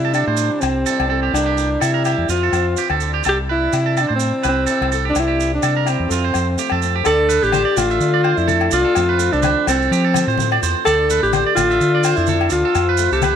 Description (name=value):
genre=highlife guitar band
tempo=126 BPM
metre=4/4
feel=swing 54% on 16ths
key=C major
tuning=A4 = 445 Hz
part: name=breathy alto saxophone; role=melody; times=0.0-13.4 s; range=C4 to A4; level=-18 LUFS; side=equal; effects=none
part: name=fingerpicked swing-style acoustic guitar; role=accompaniment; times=0.0-13.4 s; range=C3 to Bb4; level=-27 LUFS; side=left 11 dB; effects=none
part: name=electric guitar at the edge of break-up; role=arpeggios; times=0.0-13.4 s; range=F4 to E5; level=-21 LUFS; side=right 12 dB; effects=slapback echo
part: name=fingered electric bass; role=bass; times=0.0-13.3 s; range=A1 to F3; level=-21 LUFS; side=equal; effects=none
part: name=agogo bells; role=percussion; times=0.1-13.4 s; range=none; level=-26 LUFS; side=left 15 dB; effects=none
part: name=maracas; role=percussion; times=0.1-13.3 s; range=none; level=-29 LUFS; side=right 14 dB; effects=none
part: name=congas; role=percussion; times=7.1-13.3 s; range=none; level=-27 LUFS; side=left 9 dB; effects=none
room=light reverb, small room ambience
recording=1960s-style stereo with parts hard left and right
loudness=-15 LUFS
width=side -8 dB against mid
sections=0.0-7.1 A section; 7.1-13.4 B section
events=none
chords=0.0 C6; 1.3 C7; 2.3 F; 3.2 C6; 5.2 C; 6.1 F; 7.1 Dm; 9.0 F; 10.9 Dm; 12.8 F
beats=0.38 0.86 | 1.34 1.82 2.29 2.77 | 3.25 3.73 4.20 4.68 | 5.16 5.63 6.11 6.58 | 7.06 7.53 8.01 8.48 | 8.96 9.43 9.91 10.38 | 10.85 11.33 11.80 12.28 | 12.75 13.23